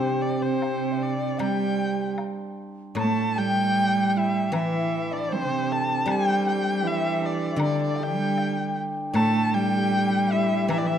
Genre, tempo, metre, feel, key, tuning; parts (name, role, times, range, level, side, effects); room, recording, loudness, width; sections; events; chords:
chinese traditional, Chinese chamber ensemble; 77 BPM; 2/4; rubato; G zhi mode; A4 = 443 Hz
warm erhu; melody; 0.0-11.0 s; C5 to A5; -28 LUFS; equal
breathy bright xiao; second line; 0.0-11.0 s; C5 to A5; -32 LUFS; left 10 dB
bright cello; second line; 0.0-11.0 s; C3 to A3; -26 LUFS; right 4 dB
hammered dulcimer; second line; 0.0-11.0 s; C4 to A4; -31 LUFS; equal
guzheng; accompaniment; 0.0-11.0 s; A2 to G3; -29 LUFS; left 2 dB
woodblock; percussion; 0.6-10.9 s; -38 LUFS; left 4 dB
moderate scoring stage reverb, RT60 1.8 s; dark, warm production; -22 LUFS; side -9 dB against mid
0.0-3.0 A section; 3.0-11.0 B section